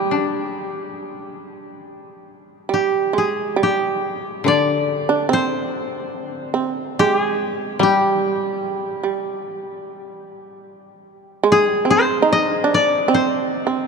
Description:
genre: japanese traditional, Japanese chamber music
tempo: 66-76 BPM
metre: 4/4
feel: rubato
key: G miyako bushi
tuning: A4 = 440 Hz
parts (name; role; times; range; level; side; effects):
- koto; melody; 0.0-13.9 s; G4 to Eb5; -20 LUFS; equal; none
- shamisen; second line; 0.0-13.9 s; G3 to Eb4; -21 LUFS; right 4 dB; none
- koto; accompaniment; 0.0-10.3 s; D3 to D4; -25 LUFS; left 7 dB; none
room: wet cathedral reverb, RT60 5.9 s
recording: dark, warm production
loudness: -17 LUFS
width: side -5 dB against mid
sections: 0.0-3.6 A section; 3.6-13.9 B section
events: none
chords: none

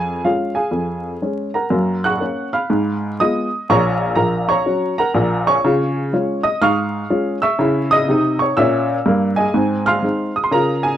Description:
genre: jazz, stride piano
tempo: 123 BPM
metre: 4/4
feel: swing 66% on 8ths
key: unclear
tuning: A4 = 440 Hz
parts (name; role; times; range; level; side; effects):
- warm upright piano; solo; 0.0-11.0 s; Bb1 to Gb6; -16 LUFS; equal; none
room: little or no reverb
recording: dry, close 1970s-style studio recording, vinyl crackle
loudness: -16 LUFS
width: side -11 dB against mid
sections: 0.0-11.0 A section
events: none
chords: 0.0 Db/F; 1.7 Gb; 2.7 Fdim/Ab; 3.7 Gb/Bb; 5.6 Db; 7.6 Dbm; 9.5 Ab

